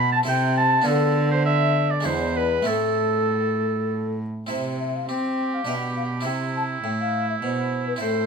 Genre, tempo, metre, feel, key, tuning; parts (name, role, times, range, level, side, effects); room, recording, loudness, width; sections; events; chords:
classical, baroque-style sonata movement with continuo; 102 BPM; 3/4; rubato; A minor, C major from 4.5 s; A4 = 439 Hz
mellow hollow baroque flute; melody; 0.0-8.3 s; A4 to B5; -25 LUFS; left 3 dB
clear oboe; second line; 0.0-8.3 s; E4 to B5; -27 LUFS; right 8 dB
harpsichord; accompaniment; 0.0-8.3 s; E2 to A4; -30 LUFS; right 1 dB
dark cello; bass; 0.0-8.3 s; E2 to C4; -25 LUFS; right 1 dB
light reverb; -21 LUFS; side -5 dB against mid
0.0-4.5 A section; 4.5-8.3 A section
0.3 Am/C; 0.9 Bdim/D; 2.1 E7; 2.7 Am; 4.5 C; 5.7 G/B; 6.3 C